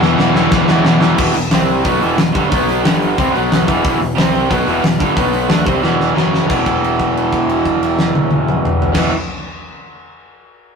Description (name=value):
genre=punk rock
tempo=181 BPM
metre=4/4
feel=straight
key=E minor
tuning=A4 = 440 Hz
part: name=overdriven electric guitar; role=riff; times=0.0-9.1 s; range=E2 to D4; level=-18 LUFS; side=left 3 dB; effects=none
part: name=raw garage guitar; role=riff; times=0.0-9.1 s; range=E2 to D4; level=-18 LUFS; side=right 4 dB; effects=overdrive
part: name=thick fuzz guitar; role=riff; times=0.0-1.2 s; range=E2 to E3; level=-19 LUFS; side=equal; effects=distortion
part: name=modern bright picked electric bass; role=bass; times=0.0-9.1 s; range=E1 to D2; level=-25 LUFS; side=equal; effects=none
part: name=big rock drum kit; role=drums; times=0.0-9.0 s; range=crash cymbal, hi-hat, kick drum, snare drum, toms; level=-16 LUFS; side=left 1 dB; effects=none
room=light reverb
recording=rough rehearsal-room recording, warm saturation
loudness=-12 LUFS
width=side -5 dB against mid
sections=0.0-1.2 A section; 1.2-6.5 B section; 6.5-9.2 C section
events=drum fill 0.0-1.2, 5.8-6.5; held note 6.5-9.0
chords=0.0 E5; 1.5 C5; 1.8 Em; 2.5 B5; 2.8 G5; 3.2 C5; 3.3 B5; 3.7 E5; 4.2 C5; 4.5 Em; 5.2 B5; 5.5 Em; 6.2 F#5; 6.5 E5